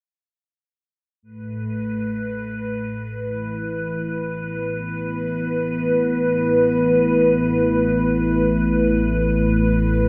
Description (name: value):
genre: dark ambient drone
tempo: free time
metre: none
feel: none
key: unclear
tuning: A4 = 439 Hz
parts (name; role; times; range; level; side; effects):
- dark analog pad; sustained chords; 1.2-10.1 s; A3 to B4; -22 LUFS; equal; chorus
- deep rumbling drone; drone; 1.9-10.1 s; A1 to A2; -32 LUFS; equal; built-in reverb, lush chorus
- icy glass pad; texture; 1.6-10.1 s; B4; -29 LUFS; equal; chorus, built-in reverb
room: wet cathedral reverb, RT60 6.4 s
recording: none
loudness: -21 LUFS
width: mono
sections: 1.2-10.1 A section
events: fade-in on synth drone 1.2-10.1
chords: 1.2 A5